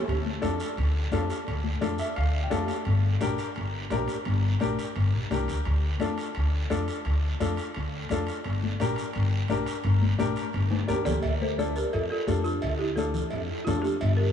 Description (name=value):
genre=latin, cumbia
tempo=172 BPM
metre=4/4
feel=straight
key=D minor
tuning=A4 = 440 Hz
part: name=upright bass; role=bass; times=0.1-14.3 s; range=G1 to F2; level=-27 LUFS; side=left 1 dB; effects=none
part: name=guiro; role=percussion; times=0.1-14.3 s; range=none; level=-42 LUFS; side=right 4 dB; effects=none
part: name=timbales and cowbell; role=percussion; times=0.1-14.2 s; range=none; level=-38 LUFS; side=right 4 dB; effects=none
part: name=congas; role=percussion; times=0.3-13.8 s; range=none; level=-35 LUFS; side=left 8 dB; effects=none
part: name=clear upright piano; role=accompaniment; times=0.4-13.9 s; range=D4 to A5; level=-32 LUFS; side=left 2 dB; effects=none
part: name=folk marimba with medium hard mallets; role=melody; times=10.9-14.3 s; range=D4 to D5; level=-30 LUFS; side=right 1 dB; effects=analog delay
room=light reverb, studio reverb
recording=cassette tape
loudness=-25 LUFS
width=side -8 dB against mid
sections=0.1-11.2 A section; 11.2-14.3 B section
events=upright piano fill 1.8-2.9; drum fill 10.7-11.2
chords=0.1 Dm; 2.9 Gm; 5.7 Dm; 8.4 Gm; 11.2 Dm